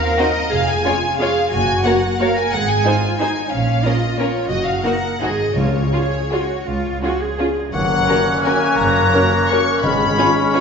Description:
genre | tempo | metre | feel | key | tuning
classical, orchestral ballroom waltz | 155-194 BPM | 3/4 | rubato | Db major | A4 = 440 Hz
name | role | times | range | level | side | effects
rich symphonic violin section | melody | 0.0-10.6 s | Db5 to C#6 | -21 LUFS | left 3 dB | none
warm studio cello section | bass | 0.0-10.1 s | F#2 to Bb4 | -23 LUFS | right 1 dB | none
warm studio violin section | second line | 0.2-10.6 s | Db4 to Db5 | -26 LUFS | left 3 dB | none
warm studio viola section | accompaniment | 0.2-10.6 s | Ab3 to Gb4 | -25 LUFS | right 2 dB | none
rich studio double bass section | bass | 0.5-10.1 s | F1 to Db2 | -23 LUFS | right 2 dB | none
cymbal swell and tam-tam | percussion | 5.6-9.1 s | none | -29 LUFS | left 1 dB | none
timpani | percussion | 5.6-6.1, 9.8-10.3 s | G#2 to Db3 | -22 LUFS | left 1 dB | none
bright clarinet | second line | 7.7-10.6 s | C#4 | -25 LUFS | right 2 dB | none
mellow hollow silver concert flute | second line | 7.7-10.6 s | E#6 to F#6 | -23 LUFS | equal | none
warm oboe | second line | 7.7-10.6 s | C#5 | -22 LUFS | left 3 dB | none
mellow bassoon | accompaniment | 7.7-10.6 s | G#3 to A#3 | -23 LUFS | right 2 dB | none
mellow French horn section | sustained chords | 8.1-10.6 s | C#4 to A#4 | -24 LUFS | left 4 dB | none
room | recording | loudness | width
wet recital hall reverb, RT60 1.6 s | recorded in a church or concert hall, nothing above 7.7 kHz | -15 LUFS | side -6 dB against mid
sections
0.0-7.7 A section; 7.7-10.6 B section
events
band accent 7.7-8.1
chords
0.0 Cm; 0.5 Db/F; 1.5 Gb; 2.5 Ab5; 3.5 Bbm; 4.5 Ebm/Gb; 5.2 Ab7(no3); 5.6 Db; 7.7 F#; 9.8 C#7/G#

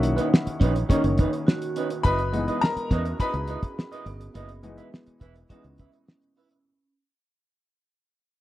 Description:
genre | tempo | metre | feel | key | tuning
lush 1970s-style soul | 104 BPM | 4/4 | straight | unclear | A4 = 440 Hz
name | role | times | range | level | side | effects
clear baby grand piano | accompaniment | 0.0-6.7 s | D#3 to B5 | -27 LUFS | left 2 dB | none
electric guitar through a small old amp | riff | 0.0-6.6 s | C#4 to E5 | -30 LUFS | right 4 dB | spring reverb
fingered electric bass | bass | 0.0-5.9 s | E1 to E2 | -27 LUFS | equal | none
cloth-damped thuddy drum kit | drums | 0.0-6.6 s | hi-hat, kick drum, snare drum | -20 LUFS | equal | none
vibraphone with hard mallets | texture | 1.5-6.9 s | B3 to G#4 | -38 LUFS | right 6 dB | none
room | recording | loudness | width
little or no reverb | dry, close 1970s-style studio recording | -22 LUFS | side -15 dB against mid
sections
0.0-6.7 A section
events
fade-out 0.0-6.7; grand piano solo 0.0-6.7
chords
0.0 Bmaj9; 2.0 F#13sus4

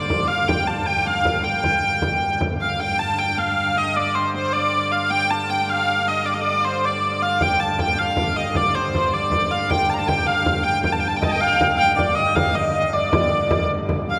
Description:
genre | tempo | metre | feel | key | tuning
medieval dance | 104 BPM (dotted quarters) | 6/8 | straight | unclear | A4 = 443 Hz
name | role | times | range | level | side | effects
rich hurdy-gurdy | melody | 0.0-14.2 s | C5 to Bb5 | -22 LUFS | equal | none
pipe organ, cornet | drone | 0.0-14.2 s | G2 to D3 | -31 LUFS | equal | none
frame drum | percussion | 0.1-2.6, 7.4-14.1 s | none | -28 LUFS | equal | none
breathy mellow bansuri | second line | 11.2-14.2 s | D5 to G5 | -27 LUFS | equal | none
room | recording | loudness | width
wet cathedral reverb, RT60 4.4 s | band playing live in one room | -20 LUFS | mono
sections
0.0-2.8 A section; 2.8-12.0 A section; 12.0-14.2 B section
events
none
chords
none

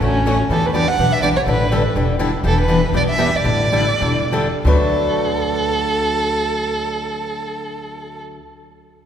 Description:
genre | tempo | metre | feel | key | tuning
acoustic string swing (jazz manouche) | 173-248 BPM | 4/4 | swing 57% on 8ths | D major | A4 = 440 Hz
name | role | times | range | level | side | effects
dark violin | melody | 0.0-8.2 s | C#4 to F#5 | -20 LUFS | right 2 dB | none
picked steel-string acoustic guitar | accompaniment | 0.0-8.4 s | D3 to B4 | -24 LUFS | right 1 dB | none
picked swing-style acoustic guitar | accompaniment | 0.0-8.4 s | D3 to B4 | -22 LUFS | left 3 dB | none
upright bass | bass | 0.0-8.3 s | E1 to E2 | -21 LUFS | equal | none
room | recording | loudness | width
wet church reverb, RT60 2.7 s | recorded in a church or concert hall | -15 LUFS | side -9 dB against mid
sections
0.5-4.7 A section; 4.7-7.4 B section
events
slowing down 2.4-4.7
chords
0.0 Dmaj7; 0.5 Em9; 1.5 A7sus4; 2.4 Em7; 3.4 A7sus4; 4.7 D6

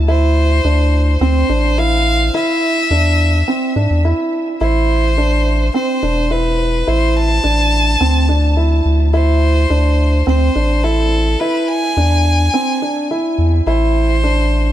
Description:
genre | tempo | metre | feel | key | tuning
piano and strings electronica | 106 BPM | 4/4 | straight | A minor | A4 = 439 Hz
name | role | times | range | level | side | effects
round analog bass | bass | 0.0-14.7 s | E1 to G#2 | -14 LUFS | equal | none
bright violin | melody | 0.1-14.7 s | A4 to A5 | -19 LUFS | left 1 dB | none
felt-muted upright piano | riff | 0.1-14.7 s | C4 to E4 | -18 LUFS | right 1 dB | ping-pong delay
room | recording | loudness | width
light reverb, studio reverb | dark, warm production | -12 LUFS | side -12 dB against mid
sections
0.0-14.7 A section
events
none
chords
0.0 Amadd11; 2.3 E7(no3); 4.6 Amadd9; 6.9 Amadd11; 11.4 E7; 13.7 Am

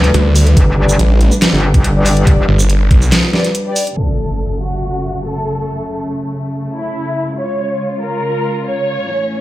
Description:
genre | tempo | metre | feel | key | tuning
heavy wobble dubstep | 141 BPM | 4/4 | half-time | F# phrygian | A4 = 440 Hz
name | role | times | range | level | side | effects
muted studio string section | sustained chords | 0.0-9.4 s | F#2 to B4 | -21 LUFS | equal | vintage 12-bit sampler grit, sidechain pumping, low-pass filter
metallic wobble bass | bass | 0.0-2.5 s | G1 to D2 | -12 LUFS | equal | chorus, overdrive
dubstep drum kit | drums | 0.0-4.1 s | crash cymbal, handclaps, hi-hat, shaker, snare drum | -16 LUFS | equal | overdrive
snarling distorted saw bass | bass | 0.1-3.1 s | G1 to D2 | -10 LUFS | equal | distortion, overdrive
electronic kick drum | drums | 0.6-3.0 s | none | -10 LUFS | equal | none
warm brass ensemble | stabs | 0.8-3.8 s | G4 to D5 | -22 LUFS | left 3 dB | tape echo
dark studio violin section | melody | 4.0-9.4 s | E4 to C#5 | -20 LUFS | equal | tape echo
impact | sound effects | 4.0-5.7 s | none | -21 LUFS | equal | none
room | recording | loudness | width
light reverb, digital ambience | played on a big sound system in a bare room, large studio reverb, low-pass filter | -12 LUFS | side -16 dB against mid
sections
0.0-4.0 A section; 4.0-9.4 B section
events
drop 0.0-4.0; break 3.1-4.0; impact 4.0-5.7; filter sweep on string section 4.0-9.4; filter sweep 4.0-9.4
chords
0.0 G; 4.0 F#m; 7.4 C#

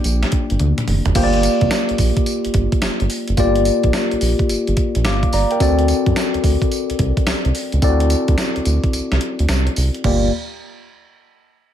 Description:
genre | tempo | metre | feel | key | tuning
R&B, new jack swing | 108 BPM | 4/4 | swing 65% on 16ths | unclear | A4 = 440 Hz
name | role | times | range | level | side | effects
warm baby grand piano | melody | 0.0-0.6 s | G5 | -45 LUFS | left 1 dB | none
tine electric piano | accompaniment | 0.0-10.3 s | Bb3 to D6 | -19 LUFS | left 2 dB | phaser, low-pass filter
round analog bass | bass | 0.0-10.3 s | F1 to F#2 | -18 LUFS | right 1 dB | none
clean 12-bit digital drum machine | drums | 0.0-10.2 s | crash cymbal, hi-hat, kick drum, snare drum, tambourine, toms | -20 LUFS | right 1 dB | none
room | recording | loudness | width
digital ambience | none | -15 LUFS | side -10 dB against mid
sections
0.0-1.2 A section; 1.2-10.0 B section; 10.0-11.7 C section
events
drum fill 0.6-1.2; filter sweep on tine electric piano 1.2-10.0; break 8.9-10.0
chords
0.0 Gm7; 5.6 D7; 10.0 Gm7

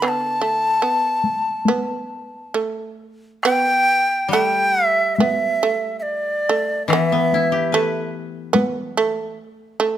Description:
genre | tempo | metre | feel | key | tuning
japanese traditional, Japanese chamber music | 66-76 BPM | 4/4 | rubato | A suspended pentatonic | A4 = 442 Hz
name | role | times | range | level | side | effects
bright shakuhachi | melody | 0.0-8.1 s | D5 to B5 | -19 LUFS | equal | none
shamisen | second line | 0.0-10.0 s | A3 to B3 | -22 LUFS | right 5 dB | none
koto | accompaniment | 0.0-9.4 s | D3 to B4 | -24 LUFS | left 6 dB | none
taiko ensemble | percussion | 0.0-8.8 s | none | -22 LUFS | left 2 dB | none
room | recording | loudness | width
light reverb | close, detailed microphones | -17 LUFS | side -11 dB against mid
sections
0.0-3.4 A section; 3.4-10.0 B section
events
none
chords
none

